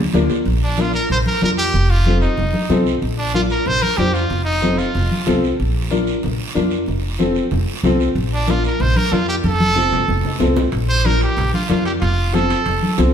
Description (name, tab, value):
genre	latin, cumbia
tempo	187 BPM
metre	4/4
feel	straight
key	Bb major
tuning	A4 = 438 Hz
part	upright bass	bass	0.0-13.1 s	F1 to F2	-20 LUFS	equal	none
part	warm upright piano	accompaniment	0.1-13.1 s	C4 to C5	-21 LUFS	left 3 dB	none
part	congas	percussion	0.1-13.1 s	none	-22 LUFS	equal	none
part	cowbell and timbales	percussion	0.1-0.4, 10.7-13.1 s	none	-28 LUFS	right 1 dB	none
part	guiro	percussion	0.1-13.1 s	none	-31 LUFS	right 5 dB	none
part	brilliant trumpet	melody	0.6-5.4, 8.3-13.0 s	D4 to C5	-20 LUFS	right 2 dB	none
room	wet stone room reverb, RT60 1.4 s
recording	band playing live in one room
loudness	-15 LUFS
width	side -8 dB against mid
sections	0.5-13.1 A section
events	drum fill 0.0-0.5, 9.4-10.7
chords	0.5 Bb; 1.7 F7; 3.0 Bb; 4.3 F7; 5.6 Bb; 6.9 F; 8.2 Bb; 9.4 F; 10.7 Bb; 12.0 F